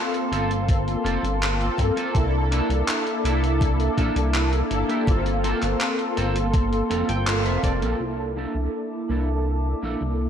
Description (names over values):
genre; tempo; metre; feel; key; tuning
vaporwave; 82 BPM; 4/4; straight; unclear; A4 = 441 Hz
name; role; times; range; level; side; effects
mellow synth brass; accompaniment; 0.0-10.3 s; Bb3 to A4; -25 LUFS; left 1 dB; ensemble chorus, tape echo
warbly tape-like pad; sustained chords; 0.0-10.3 s; Bb3 to D6; -31 LUFS; right 1 dB; chorus, built-in reverb, vintage 12-bit sampler grit
gated 80s digital drum machine; drums; 0.1-8.0 s; handclaps, hi-hat; -30 LUFS; equal; gated reverb
clean electric guitar; riff; 0.3-10.0 s; Bb3 to Bb5; -32 LUFS; right 2 dB; analog chorus, vintage 12-bit sampler grit, low-pass filter, tape echo
chorused synth bass; bass; 0.3-10.3 s; F1 to G2; -24 LUFS; equal; tube saturation
electronic kick drum; drums; 0.7-7.8 s; none; -22 LUFS; equal; none
room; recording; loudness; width
light reverb; none; -21 LUFS; side -8 dB against mid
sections
0.0-8.0 A section; 8.0-10.3 B section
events
clean electric guitar fill 6.5-8.0; band accent 7.3-7.6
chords
0.0 Gm11; 2.1 C13; 5.1 Gm11; 8.0 C13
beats
0.69 1.42 | 2.15 2.88 3.61 4.34 | 5.08 5.81 6.54 7.27 | 8.00 8.73 9.47 10.20